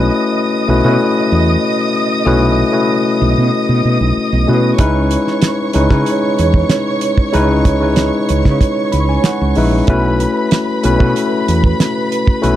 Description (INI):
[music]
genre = lush 1970s-style soul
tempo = 94 BPM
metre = 4/4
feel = straight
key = unclear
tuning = A4 = 440 Hz
[part]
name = dark symphonic string section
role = second line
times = 0.0-12.6 s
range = B4 to D#6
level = -20 LUFS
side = right 4 dB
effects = none
[part]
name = tine electric piano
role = accompaniment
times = 0.0-12.6 s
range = G#3 to B5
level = -15 LUFS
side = left 3 dB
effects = overdrive
[part]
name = woody fretless electric bass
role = bass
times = 0.0-12.6 s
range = A#1 to C#3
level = -15 LUFS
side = right 1 dB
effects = ensemble chorus
[part]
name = damped 70s drum kit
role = drums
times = 4.8-12.6 s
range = hi-hat, kick drum, snare drum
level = -14 LUFS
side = right 1 dB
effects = none
[sound]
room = little or no reverb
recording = dry, close 1970s-style studio recording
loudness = -11 LUFS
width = side -12 dB against mid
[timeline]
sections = 0.0-12.6 A section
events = tine electric piano fill 8.6-9.9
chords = 0.0 B7sus4; 4.8 C#m7; 9.9 B7sus4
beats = 0.36 0.99 1.62 | 2.26 2.89 3.52 4.16 | 4.79 5.43 6.06 6.70 | 7.34 7.97 8.61 9.25 | 9.88 10.52 11.16 11.80 | 12.43